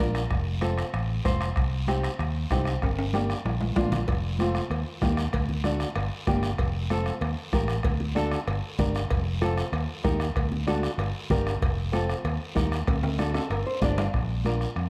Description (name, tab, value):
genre	latin, cumbia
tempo	191 BPM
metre	4/4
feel	straight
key	unclear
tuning	A4 = 440 Hz
part	nylon-string guitar	accompaniment	0.0-14.7 s	A3 to F5	-33 LUFS	equal	none
part	fingered electric bass	bass	0.0-14.9 s	F1 to F2	-31 LUFS	equal	none
part	guiro	percussion	0.0-14.9 s	none	-45 LUFS	equal	none
part	bombo	percussion	0.1-14.9 s	none	-33 LUFS	equal	none
part	timbales and cowbell	percussion	0.1-14.1 s	none	-38 LUFS	equal	none
part	congas	percussion	0.3-14.9 s	none	-36 LUFS	equal	none
room	moderate large studio reverb, RT60 1.4 s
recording	dark, warm production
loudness	-27 LUFS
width	mono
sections	0.0-4.1 A section; 4.1-14.1 B section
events	drum fill 2.8-4.1, 12.9-14.1; nylon-string guitar fill 13.2-14.1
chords	0.3 F; 1.6 Cm; 2.8 Gm; 3.5 Bb; 4.1 F; 4.7 Eb; 5.3 D; 6.0 Gm; 6.6 F; 7.2 Eb; 7.8 D; 8.5 Gm; 9.1 F; 9.7 Eb; 10.4 D; 11.0 Gm; 11.6 F; 12.2 Eb; 12.9 D; 13.5 Gm; 14.1 Bb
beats	0.00 | 0.31 0.63 0.94 1.25 | 1.57 1.88 2.20 2.51 | 2.83 3.14 3.45 3.77 | 4.08 4.39 4.71 5.02 | 5.34 5.65 5.96 6.28 | 6.59 6.91 7.22 7.53 | 7.85 8.16 8.48 8.79 | 9.11 9.42 9.73 10.05 | 10.36 10.68 10.99 11.31 | 11.62 11.94 12.25 12.56 | 12.88 13.19 13.51 13.82 | 14.14 14.45 14.77